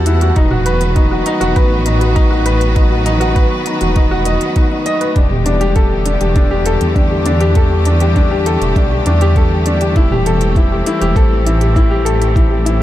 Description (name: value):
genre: piano and strings electronica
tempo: 100 BPM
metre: 4/4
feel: straight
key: unclear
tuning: A4 = 440 Hz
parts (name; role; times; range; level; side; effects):
- rich studio string section; sustained chords; 0.0-12.8 s; D3 to F#5; -20 LUFS; equal; none
- warm upright piano; riff; 0.0-12.8 s; D4 to D#5; -17 LUFS; left 2 dB; ping-pong delay
- dark detuned saw bass; bass; 0.0-12.8 s; E1 to E2; -15 LUFS; equal; sidechain pumping
- organic electronic drum kit; drums; 0.1-12.8 s; hi-hat, toms; -24 LUFS; right 2 dB; none
- electronic kick drum; drums; 0.4-12.5 s; none; -13 LUFS; equal; none
room: light reverb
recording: dark, warm production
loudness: -11 LUFS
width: side -14 dB against mid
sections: 0.0-12.8 A section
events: none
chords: 0.4 B/E; 5.2 Gadd9/E; 10.0 Am7/E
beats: | 0.36 0.96 1.56 2.17 | 2.77 3.37 3.96 4.57 | 5.17 5.76 6.37 6.96 | 7.57 8.16 8.77 9.37 | 9.96 10.56 11.16 11.77 | 12.37